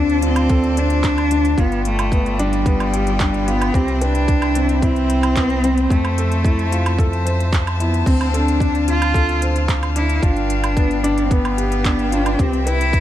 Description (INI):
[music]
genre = piano and strings electronica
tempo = 111 BPM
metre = 4/4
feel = straight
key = D dorian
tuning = A4 = 439 Hz
[part]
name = rich cello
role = melody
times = 0.0-13.0 s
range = G3 to F4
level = -21 LUFS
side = equal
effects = none
[part]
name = dark string quartet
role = sustained chords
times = 0.0-13.0 s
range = F3 to A5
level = -27 LUFS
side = left 3 dB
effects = sidechain pumping
[part]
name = warm grand piano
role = riff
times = 0.0-13.0 s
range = B3 to C5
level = -23 LUFS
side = equal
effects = none
[part]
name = round analog bass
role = bass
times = 0.0-13.0 s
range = G1 to F2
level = -20 LUFS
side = equal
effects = sidechain pumping
[part]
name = organic electronic drum kit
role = drums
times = 0.1-13.0 s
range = crash cymbal, handclaps, hi-hat, woodblock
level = -27 LUFS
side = right 2 dB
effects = none
[part]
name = electronic kick drum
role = drums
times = 0.5-13.0 s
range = none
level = -18 LUFS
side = equal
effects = none
[sound]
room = light reverb, digital ambience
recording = dark, warm production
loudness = -15 LUFS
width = side -12 dB against mid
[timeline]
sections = 0.0-13.0 A section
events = none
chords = 0.0 Dm7; 1.6 G7; 3.7 Cmaj7; 5.9 Fmaj7; 8.1 Dm7; 10.2 G7; 12.4 Cmaj7